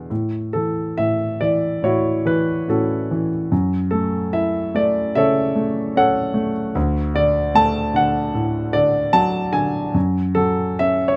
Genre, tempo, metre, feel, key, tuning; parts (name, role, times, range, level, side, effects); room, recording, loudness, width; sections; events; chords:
classical, lyrical solo piano; 68-77 BPM; 4/4; rubato; A major; A4 = 440 Hz
dark grand piano; solo; 0.0-11.2 s; D2 to A5; -20 LUFS; equal
little or no reverb; close, detailed microphones; -20 LUFS; mono
0.1-11.2 A section
0.1 A6; 3.5 F#m7; 6.8 D; 10.0 F#5